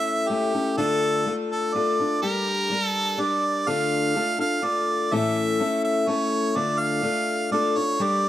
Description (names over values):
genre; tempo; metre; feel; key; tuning
rock; 124 BPM; 3/4; straight; D harmonic minor; A4 = 441 Hz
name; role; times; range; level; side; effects
bright harmonica; melody; 0.0-8.3 s; G4 to F5; -24 LUFS; right 2 dB; plate reverb, tape echo
picked steel-string acoustic guitar; accompaniment; 0.0-8.3 s; A2 to Bb4; -24 LUFS; left 3 dB; none
room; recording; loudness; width
moderate studio ambience, RT60 0.5 s; dark, warm production; -21 LUFS; side -12 dB against mid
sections
0.0-8.3 A section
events
none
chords
0.0 A; 0.8 Dm; 2.2 Gm; 3.7 Dm; 5.1 A; 6.6 Dm